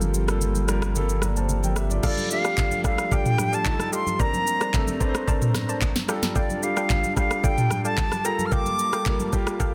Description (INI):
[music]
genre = amapiano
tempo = 111 BPM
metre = 4/4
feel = straight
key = F major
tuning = A4 = 440 Hz
[part]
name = clear grand piano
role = accompaniment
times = 0.0-9.7 s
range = G3 to Bb5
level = -32 LUFS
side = equal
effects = none
[part]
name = airy breathy pad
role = sustained chords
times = 0.0-9.7 s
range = F3 to Bb5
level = -37 LUFS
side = equal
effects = chorus, sidechain pumping
[part]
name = punchy sub bass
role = bass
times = 0.0-2.0 s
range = G1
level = -26 LUFS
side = equal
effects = none
[part]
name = smooth R&B drum kit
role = drums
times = 0.0-9.7 s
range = crash cymbal, handclaps, kick drum, rim click, shaker, snare drum, toms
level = -27 LUFS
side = equal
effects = soft clipping on snare
[part]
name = congas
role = percussion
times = 0.0-9.7 s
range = none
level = -36 LUFS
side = equal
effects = none
[part]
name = bright reedy silver concert flute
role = melody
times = 2.0-9.3 s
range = D5 to F6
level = -29 LUFS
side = equal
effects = delay
[part]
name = soft round pluck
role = stabs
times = 2.0-9.7 s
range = G4 to Bb5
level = -35 LUFS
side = equal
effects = chorus, delay
[sound]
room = light reverb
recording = dense, heavily limited modern master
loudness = -24 LUFS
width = mono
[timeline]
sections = 0.0-2.0 A section; 2.0-9.7 B section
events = none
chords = 0.0 Gm9; 2.0 F69; 3.7 F9; 4.2 Bbmaj9; 6.1 F69; 8.2 Gm9